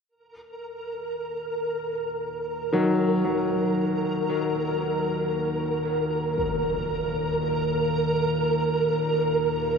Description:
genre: dark ambient drone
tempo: free time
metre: none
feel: none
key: Eb minor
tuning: A4 = 440 Hz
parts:
  - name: bowed-like drone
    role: drone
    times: 1.5-9.8 s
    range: Eb2 to Bb2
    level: -31 LUFS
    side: left 1 dB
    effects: built-in reverb
  - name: flickering grainy texture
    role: texture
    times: 0.5-9.8 s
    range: Bb4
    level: -26 LUFS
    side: right 1 dB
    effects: built-in reverb
  - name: clear grand piano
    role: arpeggios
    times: 2.7-9.8 s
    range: Eb3 to Gb3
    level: -27 LUFS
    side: left 1 dB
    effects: ping-pong delay
  - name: impact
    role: percussion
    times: 6.4-6.6 s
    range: none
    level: -38 LUFS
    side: equal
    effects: low-pass filter on sfx
room: wet cathedral reverb, RT60 4.9 s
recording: none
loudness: -23 LUFS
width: side -5 dB against mid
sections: 0.1-9.8 A section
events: fade-in on synth drone 0.1-9.8; fade-in on impacts and reversed cymbals 0.1-9.8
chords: 0.1 Ebm

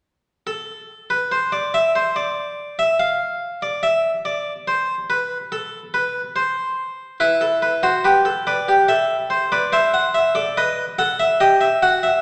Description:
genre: classical, baroque-style 3-part fugue for harpsichord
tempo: 71 BPM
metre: 4/4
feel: straight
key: unclear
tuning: A4 = 440 Hz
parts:
  - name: harpsichord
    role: solo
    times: 0.5-12.2 s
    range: E4 to F#5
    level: -20 LUFS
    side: equal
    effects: none
room: wet recital hall reverb, RT60 1.6 s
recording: none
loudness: -20 LUFS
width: mono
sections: 0.5-12.2 A section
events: none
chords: 0.5 N.C.; 7.2 Em; 8.9 Am; 10.6 B7

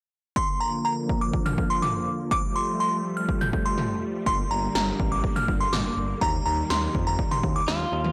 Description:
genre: synth-pop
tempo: 123 BPM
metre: 4/4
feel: straight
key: unclear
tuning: A4 = 438 Hz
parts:
  - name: glassy synth bell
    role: second line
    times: 0.4-7.8 s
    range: Bb5 to G6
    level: -29 LUFS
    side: equal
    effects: chorus, delay
  - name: string machine, violas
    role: sustained chords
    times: 0.4-8.1 s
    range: D3 to Bb3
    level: -33 LUFS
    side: equal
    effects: ensemble chorus, low-pass filter
  - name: 80s electronic pad drums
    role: drums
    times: 0.4-8.1 s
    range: kick drum, snare drum, toms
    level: -30 LUFS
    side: equal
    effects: gated reverb on snare and toms
  - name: smooth synth bass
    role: bass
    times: 4.3-8.1 s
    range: G1 to F2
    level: -32 LUFS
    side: equal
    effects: none
  - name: direct-recorded clean electric guitar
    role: melody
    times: 7.7-8.1 s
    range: F4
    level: -30 LUFS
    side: equal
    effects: delay
room: moderate digital room reverb, RT60 1.1 s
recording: blown-out, overdriven recording, overdrive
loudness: -25 LUFS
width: mono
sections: 0.4-8.1 A section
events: filter sweep on string machine 0.4-8.1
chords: 0.4 Bb; 2.3 Fadd9; 4.3 Gm; 6.2 Eb

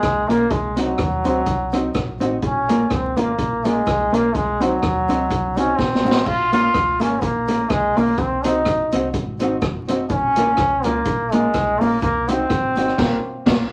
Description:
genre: ska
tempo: 125 BPM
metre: 4/4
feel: swing 55% on 8ths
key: Bb minor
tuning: A4 = 440 Hz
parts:
  - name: bright trombone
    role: melody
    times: 0.0-13.7 s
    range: Gb3 to F4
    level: -22 LUFS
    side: equal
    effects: none
  - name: hollow-body short-scale fingered electric bass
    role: bass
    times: 0.0-13.6 s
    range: Gb1 to Eb2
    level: -33 LUFS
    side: equal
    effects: none
  - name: street-band drum kit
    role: drums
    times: 0.0-13.6 s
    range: crash cymbal, hi-hat, kick drum, rim click, snare drum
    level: -26 LUFS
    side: equal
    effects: none
  - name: cabasa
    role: percussion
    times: 0.0-12.9 s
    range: none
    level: -57 LUFS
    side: equal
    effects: none
  - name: mellow electric guitar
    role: accompaniment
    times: 0.3-13.7 s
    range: Bb3 to Gb4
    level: -25 LUFS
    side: equal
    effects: spring reverb
  - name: warm upright piano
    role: stabs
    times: 0.3-13.6 s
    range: Bb3 to C5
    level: -30 LUFS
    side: equal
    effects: none
room: wet small room ambience, RT60 0.5 s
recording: vinyl crackle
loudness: -19 LUFS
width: mono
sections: 0.0-13.7 A section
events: drum fill 5.8-6.3; band accent 13.0-13.7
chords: 0.0 Bbm; 0.5 Cdim; 2.4 Bbm; 4.3 Cdim; 6.3 Bbm; 8.2 Cdim; 10.1 Bbm; 12.0 Cdim; 13.0 Bbm

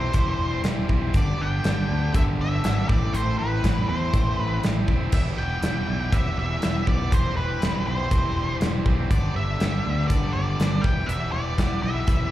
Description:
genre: classic rock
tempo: 121 BPM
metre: 4/4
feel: straight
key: E minor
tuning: A4 = 440 Hz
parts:
  - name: octave-fuzz lead guitar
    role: melody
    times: 0.0-12.3 s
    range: B4 to G5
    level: -30 LUFS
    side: equal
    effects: distortion, slapback echo, tape echo
  - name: distorted electric guitar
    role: riff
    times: 0.0-12.3 s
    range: G2 to E4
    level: -29 LUFS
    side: equal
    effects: overdrive
  - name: growling fingered electric bass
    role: bass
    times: 0.0-12.3 s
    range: E1 to E2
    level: -26 LUFS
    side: equal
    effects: overdrive
  - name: gated 80s drum kit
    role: drums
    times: 0.1-12.2 s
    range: crash cymbal, hi-hat, kick drum, snare drum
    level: -24 LUFS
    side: equal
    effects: none
room: small room ambience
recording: live gig heard through the venue's PA, club reverb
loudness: -21 LUFS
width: side -14 dB against mid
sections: 0.0-12.3 A section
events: none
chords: 0.0 C/E; 1.2 G; 2.9 Am; 5.1 Em; 7.1 C/E; 9.1 G; 10.8 Em

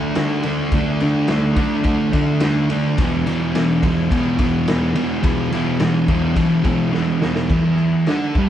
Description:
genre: garage rock duo or trio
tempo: 106 BPM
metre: 4/4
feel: straight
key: unclear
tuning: A4 = 440 Hz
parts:
  - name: fuzz guitar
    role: riff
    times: 0.0-8.5 s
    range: E2 to D4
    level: -17 LUFS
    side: equal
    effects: distortion
  - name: raw garage drum kit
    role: drums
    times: 0.2-8.5 s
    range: crash cymbal, kick drum, ride cymbal, snare drum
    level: -22 LUFS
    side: equal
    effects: none
room: moderate stone room reverb, RT60 1.0 s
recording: band playing live in one room, cassette tape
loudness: -16 LUFS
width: side -11 dB against mid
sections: 0.0-7.5 A section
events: drum fill 6.9-7.5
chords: 0.0 D5; 3.0 E5; 7.5 Em7

